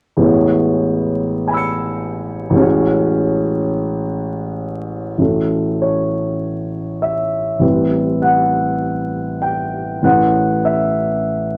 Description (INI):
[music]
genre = classical, impressionist solo piano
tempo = 50 BPM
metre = 4/4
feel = rubato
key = unclear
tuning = A4 = 439 Hz
[part]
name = warm concert grand piano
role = solo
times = 0.2-11.6 s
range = A1 to C#7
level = -17 LUFS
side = equal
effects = none
[sound]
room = wet studio ambience, RT60 0.5 s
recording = vinyl crackle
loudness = -17 LUFS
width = mono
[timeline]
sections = 0.3-5.2 A section; 5.2-11.6 B section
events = none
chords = 0.3 Amaj9; 2.6 F#madd9/A; 5.2 A6; 7.6 Cmaj7/A; 10.0 Aadd9